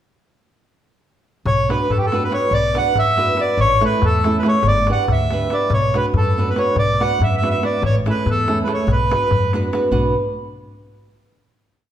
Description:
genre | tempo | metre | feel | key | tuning
balkan folk, Balkan wedding band | 284 BPM (eighths) | 5/8 | straight | B minor | A4 = 438 Hz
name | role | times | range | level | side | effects
accordion | melody | 1.5-9.5 s | G4 to F#5 | -19 LUFS | right 1 dB | none
upright bass | bass | 1.5-10.1 s | G1 to F#2 | -22 LUFS | equal | none
darbuka | percussion | 1.5-10.1 s | none | -22 LUFS | left 2 dB | none
flamenco guitar | accompaniment | 1.7-10.1 s | A3 to B4 | -22 LUFS | right 2 dB | none
room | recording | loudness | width
wet recital hall reverb, RT60 1.6 s | none | -15 LUFS | side -10 dB against mid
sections
1.5-9.9 A section; 9.9-11.0 final chord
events
none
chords
1.5 Bm; 3.6 A; 4.6 G; 5.7 Bm; 7.8 A; 8.9 Bm

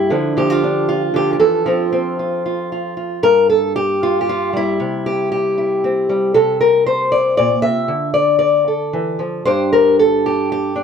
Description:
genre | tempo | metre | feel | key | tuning
folk, solo fingerstyle acoustic guitar | 116 BPM | 3/4 | straight | unclear | A4 = 441 Hz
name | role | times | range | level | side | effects
fingerpicked old ladder-braced acoustic guitar | solo | 0.0-10.8 s | G2 to E5 | -14 LUFS | equal | none
room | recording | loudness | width
light reverb | none | -14 LUFS | side -7 dB against mid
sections
0.0-3.2 A section; 3.2-10.8 B section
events
none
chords
0.1 Dm; 1.7 F; 3.2 N.C.; 4.8 C; 6.3 Bbmaj9#11; 7.9 Dm; 9.4 G5

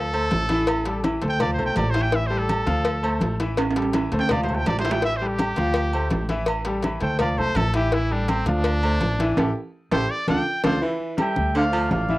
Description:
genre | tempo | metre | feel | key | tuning
latin, salsa | 166 BPM | 4/4 | straight | A minor | A4 = 440 Hz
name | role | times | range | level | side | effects
bright trumpet | melody | 0.0-10.8 s | C4 to G5 | -27 LUFS | equal | cassette tape
bright concert grand piano | accompaniment | 0.0-12.2 s | E3 to F5 | -26 LUFS | left 1 dB | cassette tape
upright bass | bass | 0.0-12.2 s | A1 to D2 | -26 LUFS | equal | none
agogo bells and timbales | percussion | 0.1-12.1 s | none | -28 LUFS | right 4 dB | none
congas | percussion | 0.1-12.2 s | none | -28 LUFS | left 1 dB | none
cowbell | percussion | 0.3-10.7 s | none | -29 LUFS | left 3 dB | none
warm baritone saxophone | second line | 10.8-12.0 s | D3 to F3 | -26 LUFS | right 1 dB | cassette tape
mellow trumpet section | melody | 11.2-12.2 s | D5 to G5 | -24 LUFS | right 1 dB | cassette tape
room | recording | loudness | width
moderate small room reverb, RT60 0.5 s | home recording on cassette | -20 LUFS | side -18 dB against mid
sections
0.0-10.8 A section; 10.8-12.2 B section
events
trumpet solo 0.0-10.8; drum fill 3.6-5.0, 9.4-10.8; band accent 9.4-10.8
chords
0.0 D7(no3); 0.7 Am7; 1.4 Dm7; 2.1 A5; 2.9 Dm7; 3.6 Am7; 4.3 Dm7; 5.0 A5; 5.8 Dm7; 6.5 Am7; 7.2 Dm7; 7.9 A5; 8.7 Dm7; 9.4 A5; 10.1 Dm; 10.8 A5; 11.5 Dm7

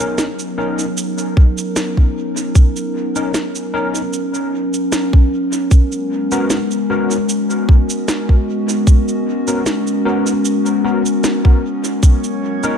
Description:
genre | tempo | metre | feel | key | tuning
ambient dub | 76 BPM | 4/4 | swing 53% on 16ths | G# minor | A4 = 440 Hz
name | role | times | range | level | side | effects
warbly tape-like pad | sustained chords | 0.0-12.8 s | F#3 to A#4 | -18 LUFS | left 1 dB | chorus, built-in reverb
overdriven tine electric piano | stabs | 0.0-12.8 s | B3 to A#4 | -23 LUFS | left 2 dB | ensemble chorus, dub echo
electronic cabasa and snare drum | drums | 0.0-12.8 s | none | -24 LUFS | right 1 dB | dub echo
electronic kick drum | drums | 1.4-12.2 s | none | -9 LUFS | equal | none
drifting glass-harmonics texture | texture | 12.1-12.8 s | C#5 | -28 LUFS | right 2 dB | chorus, built-in reverb
room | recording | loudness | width
light reverb, digital ambience | none | -14 LUFS | side -7 dB against mid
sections
0.0-12.8 A section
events
none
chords
0.0 Bmaj9; 5.7 G#m11; 12.0 Bmaj9

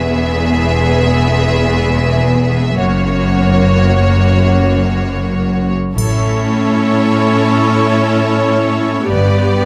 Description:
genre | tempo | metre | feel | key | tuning
cinematic, epic orchestral film score | free time | none | none | unclear | A4 = 440 Hz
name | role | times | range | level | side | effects
rich symphonic violin section | melody | 0.0-5.7 s | C#5 to E5 | -23 LUFS | equal | none
clear symphonic violin section | second line | 0.0-9.7 s | F#4 to D5 | -22 LUFS | equal | none
clear symphonic viola section | accompaniment | 0.0-9.7 s | A#3 to G4 | -21 LUFS | equal | none
rich studio double bass section | bass | 0.0-6.4, 9.1-9.5 s | E1 to A1 | -18 LUFS | equal | none
rich symphonic cello section | bass | 0.0-9.7 s | E2 to A2 | -18 LUFS | equal | none
triangle | percussion | 6.0-6.8 s | none | -31 LUFS | equal | none
room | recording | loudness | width
moderate scoring stage reverb, RT60 2.1 s | none | -13 LUFS | mono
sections
0.0-6.0 A section; 6.0-9.7 B section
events
build-up 0.0-6.0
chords
0.0 E; 2.8 F#; 6.0 A; 9.1 G

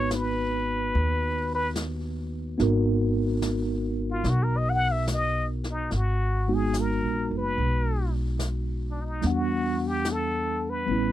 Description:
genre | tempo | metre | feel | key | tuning
jazz ballad | 72 BPM | 4/4 | swing 69% on 8ths | G# minor | A4 = 437 Hz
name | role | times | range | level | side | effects
trumpet with plunger mute | melody | 0.0-11.1 s | D4 to F#5 | -28 LUFS | left 2 dB | none
mellow tine electric piano | accompaniment | 0.0-11.1 s | G3 to F#5 | -29 LUFS | right 1 dB | medium stereo tremolo
upright bass | bass | 0.0-11.1 s | F#1 to E2 | -28 LUFS | equal | none
vintage brush drum kit | drums | 0.1-11.1 s | brushed snare drum, hi-hat, snare drum | -37 LUFS | left 1 dB | none
room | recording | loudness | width
little or no reverb | dry, close 1970s-style studio recording | -24 LUFS | side -13 dB against mid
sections
0.0-5.9 A section; 5.9-11.1 B section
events
muted trumpet solo 0.0-5.9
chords
0.0 G#m9; 5.9 G#m7; 9.2 Em7

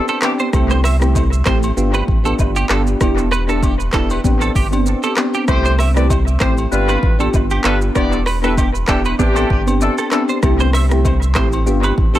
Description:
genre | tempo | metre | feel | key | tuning
afrobeats | 97 BPM | 4/4 | swing 55% on 16ths | C major | A4 = 441 Hz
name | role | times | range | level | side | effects
dark horn section | second line | 0.0-0.3, 5.5-10.2 s | E3 to D5 | -22 LUFS | left 2 dB | none
soft electric-piano-like synth keys | accompaniment | 0.0-12.2 s | A3 to G4 | -19 LUFS | equal | chorus, phaser, analog delay
direct-recorded clean electric guitar | riff | 0.1-12.2 s | G4 to E5 | -24 LUFS | right 4 dB | ensemble chorus, analog delay
afro-pop drum kit | drums | 0.1-12.2 s | handclaps, hi-hat, kick drum, rim click, shaker | -19 LUFS | equal | analog delay
agogo bells and woodblock | percussion | 0.1-12.2 s | none | -29 LUFS | left 2 dB | none
warm sub bass | bass | 0.5-12.2 s | E1 to C2 | -18 LUFS | equal | none
room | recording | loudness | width
digital ambience | echo-heavy mix | -13 LUFS | side -13 dB against mid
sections
0.0-12.2 A section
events
none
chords
0.0 Am11; 0.5 C6; 1.8 G7; 3.0 Em7; 4.2 Am11; 5.5 C6; 6.7 G7; 8.0 Em7; 9.2 Am11; 10.4 C6; 11.7 G7

